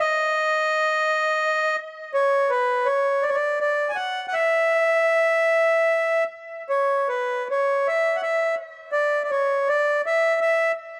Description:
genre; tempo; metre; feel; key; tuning
celtic folk; 79 BPM; 3/4; uneven beats, rubato; unclear; A4 = 441 Hz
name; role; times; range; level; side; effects
accordion; solo; 0.0-10.7 s; B4 to G#5; -22 LUFS; equal; tape echo
room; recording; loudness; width
light reverb; none; -22 LUFS; mono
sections
0.0-11.0 A section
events
none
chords
none

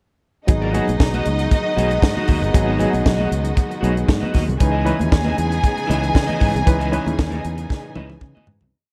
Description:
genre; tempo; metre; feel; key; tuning
disco; 116 BPM; 4/4; straight; unclear; A4 = 440 Hz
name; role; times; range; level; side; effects
warm symphonic violin section; second line; 0.5-8.4 s; D#4 to G#5; -28 LUFS; equal; none
barky reed electric piano; accompaniment; 0.5-8.8 s; E3 to B4; -26 LUFS; equal; overdrive, medium tremolo
electric guitar at the edge of break-up; accompaniment; 0.5-8.7 s; E4 to D#5; -32 LUFS; equal; none
clear studio string section; sustained chords; 0.5-8.7 s; A#2 to F#4; -32 LUFS; equal; none
fingered electric bass; bass; 0.5-8.7 s; G1 to C#3; -24 LUFS; equal; none
tight funk drum kit; drums; 0.5-8.7 s; hi-hat, kick drum, snare drum, toms; -20 LUFS; equal; none
congas; percussion; 0.5-8.7 s; none; -33 LUFS; equal; none
room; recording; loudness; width
little or no reverb; dark, warm production; -19 LUFS; mono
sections
0.5-8.7 groove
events
fade-out 6.7-8.7; drum fill 7.7-8.7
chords
0.5 G#m7; 4.6 C#m9

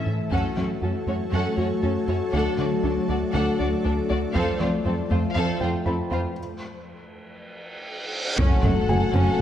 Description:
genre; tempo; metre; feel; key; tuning
cinematic, hybrid orchestral and electronic film score; 119 BPM; 4/4; straight; F# minor; A4 = 436 Hz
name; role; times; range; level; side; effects
dark symphonic violin section; melody; 0.0-9.4 s; A4 to F#5; -34 LUFS; left 4 dB; none
warm symphonic viola section; accompaniment; 0.0-9.4 s; F#3 to D4; -33 LUFS; right 1 dB; none
ethereal airy pad; sustained chords; 0.0-9.4 s; E3 to E5; -30 LUFS; equal; ensemble chorus, built-in reverb
felt-muted upright piano; texture; 0.0-9.4 s; C#5 to B5; -36 LUFS; left 1 dB; tape echo
rubbery square bass; riff; 0.1-9.4 s; D2 to F#3; -28 LUFS; right 1 dB; none
rich symphonic violin section; second line; 0.3-9.4 s; C4 to A4; -32 LUFS; left 2 dB; none
warm French horn section; sustained chords; 0.3-9.4 s; A3 to F#4; -29 LUFS; left 5 dB; none
soft round pluck; arpeggios; 0.3-9.3 s; D3 to F#4; -33 LUFS; right 1 dB; chorus
warm symphonic cello section; bass; 0.3-9.4 s; D2 to F#2; -30 LUFS; right 1 dB; none
taiko ensemble; drums; 0.3-1.3, 4.4-5.3, 8.4-8.9 s; none; -26 LUFS; equal; none
reverse cymbal and impact; sound effects; 7.4-9.4 s; none; -30 LUFS; right 1 dB; none
warm symphonic double bass section; bass; 8.4-9.2 s; F#1; -28 LUFS; right 2 dB; none
room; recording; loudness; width
wet recital hall reverb, RT60 1.8 s; none; -21 LUFS; side -10 dB against mid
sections
0.3-8.4 A section; 8.4-9.4 B section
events
break 6.4-8.4; reverse cymbal 7.4-8.4; drum fill 7.6-8.4; impact 8.4-9.4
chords
0.3 F#m; 2.3 D; 4.4 F; 6.4 N.C.; 8.4 F#m

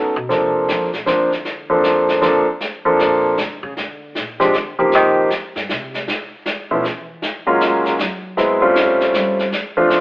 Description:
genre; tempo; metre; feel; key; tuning
jazz piano trio; 156 BPM; 3/4; swing 64% on 8ths; Bb major; A4 = 440 Hz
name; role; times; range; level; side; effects
warm concert grand piano; melody; 0.0-10.0 s; F3 to C5; -14 LUFS; equal; none
upright bass; bass; 0.0-9.5 s; G2 to G3; -24 LUFS; equal; none
brushed snare drum and snare drum; drums; 0.3-10.0 s; none; -23 LUFS; equal; none
room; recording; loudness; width
moderate stone room reverb, RT60 1.1 s; band playing live in one room, telephone sound; -15 LUFS; side -22 dB against mid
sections
0.0-2.6 A section; 2.6-10.0 A section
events
upright bass solo 0.0-10.0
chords
0.3 Bbmaj7; 2.6 Bbmaj9; 4.9 Eb69; 6.1 Dbm7 (rootless); 7.2 Gbmaj7; 8.4 A7alt

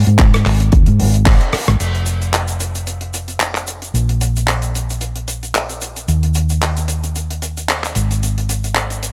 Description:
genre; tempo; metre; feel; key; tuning
nu-disco, nu disco; 112 BPM; 4/4; swing 55% on 16ths; unclear; A4 = 440 Hz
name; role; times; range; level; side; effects
hollow-body short-scale fingered electric bass; bass; 0.0-9.1 s; F1 to Ab2; -19 LUFS; equal; none
damped 70s drum kit; drums; 0.1-9.1 s; crash cymbal, handclaps, hi-hat, rim click, shaker; -23 LUFS; equal; none
electronic kick drum; drums; 0.2-1.4 s; none; -14 LUFS; equal; none
room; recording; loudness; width
light reverb; none; -17 LUFS; mono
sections
0.0-1.8 A section; 1.8-9.1 B section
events
band accent 1.3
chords
none

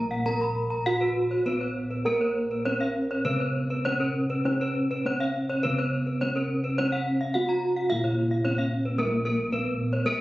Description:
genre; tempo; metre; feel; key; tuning
Balinese gamelan; 100-112 BPM; 4/4; straight; Bb pelog; A4 = 440 Hz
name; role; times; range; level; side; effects
gamelan-type bronze metallophone; melody; 0.0-10.2 s; Bb3 to Bb4; -28 LUFS; right 1 dB; none
gamelan-type bossed gongs; bass; 0.0-10.2 s; Bb1 to Bb4; -29 LUFS; equal; none
gamelan-type bronze metallophone; arpeggios; 0.1-10.2 s; Bb4 to Cb6; -30 LUFS; left 1 dB; none
room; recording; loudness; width
light reverb; recorded on a phone in the room, studio reverb, compression, nothing above 8.0 kHz; -24 LUFS; side -17 dB against mid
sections
0.0-9.0 A section; 9.0-10.2 B section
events
none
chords
none

